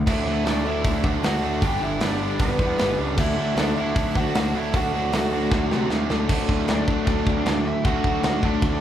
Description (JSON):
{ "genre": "punk rock", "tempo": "154 BPM", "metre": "4/4", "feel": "straight", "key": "unclear", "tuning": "A4 = 441 Hz", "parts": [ { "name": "overdriven electric guitar", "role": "riff", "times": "0.0-8.8 s", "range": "G2 to D4", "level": "-27 LUFS", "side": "left 6 dB", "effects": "none" }, { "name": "overdriven semi-hollow guitar", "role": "riff", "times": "0.0-8.8 s", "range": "G2 to D4", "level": "-27 LUFS", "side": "right 7 dB", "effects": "none" }, { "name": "bluesy overdriven lead guitar", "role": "melody", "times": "0.1-8.8 s", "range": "B3 to G5", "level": "-27 LUFS", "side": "right 1 dB", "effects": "distortion" }, { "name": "fuzz picked electric bass", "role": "bass", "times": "0.1-8.8 s", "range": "G1 to C3", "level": "-29 LUFS", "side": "equal", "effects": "overdrive" }, { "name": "tight metal drum kit", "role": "drums", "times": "0.1-8.7 s", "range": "crash cymbal, hi-hat, kick drum, snare drum", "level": "-25 LUFS", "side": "equal", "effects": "none" } ], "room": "moderate large studio reverb, RT60 0.8 s", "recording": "band playing live in one room", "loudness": "-20 LUFS", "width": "side -10 dB against mid", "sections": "0.1-6.3 A section; 6.3-8.8 B section", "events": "drum fill 5.5-6.3", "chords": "0.1 D; 1.6 G; 3.2 D" }